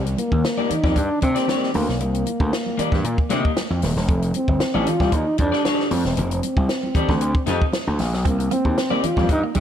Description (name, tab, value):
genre	funk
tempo	115 BPM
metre	4/4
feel	straight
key	unclear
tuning	A4 = 440 Hz
part	breathy trombone	melody	0.0-9.6 s	A3 to F4	-24 LUFS	equal	slapback echo
part	gritty slap bass	bass	0.0-9.6 s	Eb1 to C3	-22 LUFS	equal	overdrive
part	compact cocktail drum kit	drums	0.1-9.6 s	hi-hat, kick drum, snare drum	-23 LUFS	equal	none
part	congas	percussion	0.2-9.6 s	none	-32 LUFS	right 4 dB	none
part	electric guitar at the edge of break-up	accompaniment	0.6-9.3 s	Bb3 to Eb5	-26 LUFS	left 5 dB	none
part	clean electric guitar	riff	8.3-9.6 s	G3 to C4	-29 LUFS	right 10 dB	none
room	light reverb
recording	dark, warm production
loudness	-18 LUFS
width	side -9 dB against mid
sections	0.0-9.6 A section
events	none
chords	0.0 Cm9; 4.1 F13; 8.3 Cm9